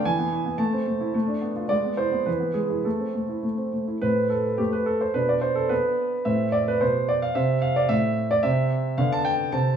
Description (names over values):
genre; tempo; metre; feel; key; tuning
classical-period piano sonatina; 101-112 BPM; 2/4; rubato; A minor; A4 = 440 Hz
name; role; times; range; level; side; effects
warm grand piano; solo; 0.0-9.8 s; A2 to A5; -22 LUFS; right 1 dB; none
room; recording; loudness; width
wet recital hall reverb, RT60 1.3 s; small room ambience; -22 LUFS; side -8 dB against mid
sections
0.0-4.0 A section; 4.0-9.8 A section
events
none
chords
0.0 E; 0.6 Am; 1.1 Bm7b5/A; 1.7 E7/G#; 2.3 E; 2.9 Am; 5.2 Bm7; 6.3 Am; 7.4 Am/C; 8.4 N.C.; 9.0 G/D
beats
0.05 | 0.59 1.14 | 1.70 2.27 | 2.85 3.44 | 4.03 4.60 | 5.15 5.71 | 6.27 6.82 | 7.37 7.91 | 8.45 8.98 | 9.53